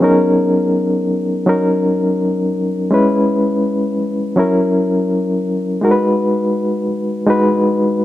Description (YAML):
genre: soul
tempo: 83 BPM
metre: 4/4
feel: swing 54% on 16ths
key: F# major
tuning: A4 = 438 Hz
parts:
  - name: reed electric piano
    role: solo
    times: 0.0-8.0 s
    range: F#3 to B4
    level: -13 LUFS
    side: left 1 dB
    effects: fast tremolo
room: light reverb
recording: none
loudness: -14 LUFS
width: side -14 dB against mid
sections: 0.0-8.0 A section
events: none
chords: 0.0 F#6; 2.9 C#m7; 4.4 F#7; 5.8 B6